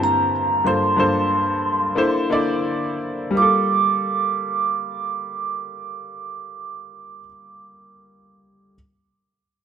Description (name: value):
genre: soul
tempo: 84-95 BPM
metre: 4/4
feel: straight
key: G dorian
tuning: A4 = 440 Hz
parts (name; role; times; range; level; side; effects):
- vibraphone with soft mallets; melody; 0.0-7.2 s; Bb5 to D6; -21 LUFS; right 4 dB; tape echo
- clear concert grand piano; accompaniment; 0.0-8.8 s; G2 to D5; -22 LUFS; left 1 dB; none
room: moderate echo chamber reverb, RT60 1.9 s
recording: none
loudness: -18 LUFS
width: side -8 dB against mid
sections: 0.0-3.4 A section; 3.4-6.2 B section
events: slowing down 0.0-3.4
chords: 0.0 C7/G; 0.7 Bbmaj9/G; 2.0 C13; 3.4 Gm9